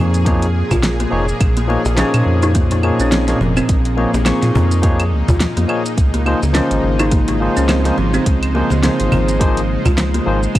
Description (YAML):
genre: organic downtempo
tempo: 105 BPM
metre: 4/4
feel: swing 57% on 16ths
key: unclear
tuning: A4 = 440 Hz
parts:
  - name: barky tine electric piano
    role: accompaniment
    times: 0.0-10.4 s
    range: F3 to Db6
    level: -21 LUFS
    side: left 2 dB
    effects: medium stereo tremolo, sidechain pumping, tape echo
  - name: bowed-like drone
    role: sustained chords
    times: 0.0-10.6 s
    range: Bb2 to C5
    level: -23 LUFS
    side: right 1 dB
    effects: built-in reverb, sidechain pumping
  - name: kalimba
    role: arpeggios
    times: 0.0-10.6 s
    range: F3 to F4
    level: -20 LUFS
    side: equal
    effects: tape echo
  - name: round analog bass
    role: bass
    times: 0.0-10.6 s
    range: F1 to Bb2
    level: -18 LUFS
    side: equal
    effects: tube saturation, sidechain pumping
  - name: deep house drum kit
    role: drums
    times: 0.1-10.6 s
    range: claves, hi-hat, shaker, snare drum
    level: -21 LUFS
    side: equal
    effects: small room ambience
  - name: electronic kick drum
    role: drums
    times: 0.3-10.6 s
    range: none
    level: -16 LUFS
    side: equal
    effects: small room ambience
  - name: cajon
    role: percussion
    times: 0.7-10.0 s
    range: none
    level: -22 LUFS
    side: left 1 dB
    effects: none
room: little or no reverb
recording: dry, gritty hardware recording, transformer saturation, cassette tape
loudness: -13 LUFS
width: side -15 dB against mid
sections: 0.0-10.6 A section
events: none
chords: 0.0 Bbm7; 6.0 Dbmaj7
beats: 0.26 0.83 | 1.41 1.98 2.55 3.12 | 3.69 4.26 4.83 5.41 | 5.98 6.55 7.12 7.69 | 8.26 8.84 9.41 9.98 | 10.55